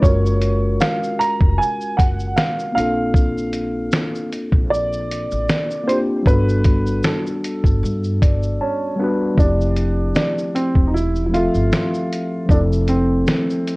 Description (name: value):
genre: lo-fi hip hop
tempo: 77 BPM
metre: 4/4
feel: swing 55% on 16ths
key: F major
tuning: A4 = 441 Hz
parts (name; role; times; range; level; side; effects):
- dark upright piano; melody; 0.0-13.8 s; B3 to Bb5; -22 LUFS; right 1 dB; low-pass filter
- mellow tine electric piano; accompaniment; 0.0-13.8 s; F3 to A5; -22 LUFS; left 1 dB; cassette tape, low-pass filter
- upright bass; bass; 0.0-13.2 s; E1 to G2; -21 LUFS; equal; none
- lo-fi sampler-style drum kit; drums; 0.0-13.8 s; finger snaps, hi-hat, kick drum, shaker, snare drum; -18 LUFS; equal; none
room: light reverb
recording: worn, warbling old tape, cassette tape, warbly pitch drift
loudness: -16 LUFS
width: side -24 dB against mid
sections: 0.0-9.4 A section; 9.4-13.8 B section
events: tine electric piano fill 7.8-9.4; drums muted 8.6-9.4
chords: 0.0 Gbmaj9; 2.8 Bbmaj9; 6.3 Gmaj9; 9.4 Fmaj9